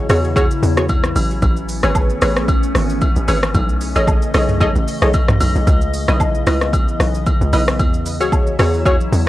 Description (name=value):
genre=amapiano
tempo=113 BPM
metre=4/4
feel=swing 55% on 16ths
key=unclear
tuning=A4 = 440 Hz
part: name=glassy FM pad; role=sustained chords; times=0.0-9.3 s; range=C#3 to D#5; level=-24 LUFS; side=left 2 dB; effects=ensemble chorus, built-in reverb
part: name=punchy chord stab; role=stabs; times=0.0-9.3 s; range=E4 to D#5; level=-21 LUFS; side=equal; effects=chorus, tape echo
part: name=tight log drum bass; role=bass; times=0.0-9.3 s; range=G#1 to E2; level=-18 LUFS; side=equal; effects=none
part: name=deep house drum kit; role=drums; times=0.1-9.3 s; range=hi-hat, kick drum, rim click, shaker, toms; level=-18 LUFS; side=equal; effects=none
part: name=agogo bells and woodblock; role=percussion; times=0.1-9.0 s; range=none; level=-25 LUFS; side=equal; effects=none
room=digital ambience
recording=dry, gritty hardware recording, cassette tape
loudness=-14 LUFS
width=side -15 dB against mid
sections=0.0-9.3 A section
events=none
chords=0.0 E69; 1.2 Amaj9; 3.5 B13; 5.7 C#m9; 7.8 E69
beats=0.36 0.89 | 1.42 1.95 2.48 3.02 | 3.55 4.08 4.61 5.14 | 5.67 6.20 6.73 7.26 | 7.79 8.32 8.86